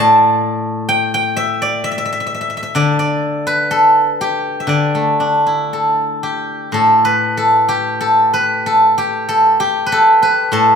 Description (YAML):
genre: chinese traditional, Chinese solo plucked strings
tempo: 57-65 BPM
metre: 4/4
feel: rubato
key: D zhi mode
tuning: A4 = 441 Hz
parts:
  - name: steel-string zither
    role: solo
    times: 0.0-10.8 s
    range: A2 to A5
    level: -12 LUFS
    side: equal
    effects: none
room: moderate recital hall reverb, RT60 1.4 s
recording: recorded in a church or concert hall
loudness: -12 LUFS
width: side -6 dB against mid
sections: 0.0-6.7 A section; 6.7-10.8 B section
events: none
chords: none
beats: 0.89 1.82 | 2.76 3.70 4.68 5.72 | 6.74 7.70 8.66 9.61 | 10.55